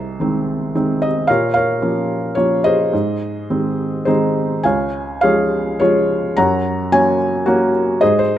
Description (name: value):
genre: classical, lyrical solo piano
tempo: 107 BPM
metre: 3/4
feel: uneven beats, rubato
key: unclear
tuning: A4 = 440 Hz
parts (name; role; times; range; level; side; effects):
- felt-muted upright piano; solo; 0.0-8.4 s; C2 to Bb5; -15 LUFS; equal; none
room: light reverb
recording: close, detailed microphones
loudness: -15 LUFS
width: side -11 dB against mid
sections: 0.0-8.4 A section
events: none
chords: 0.0 Ab/C; 1.3 Bbm; 2.9 Ab; 4.6 Db; 6.4 Gb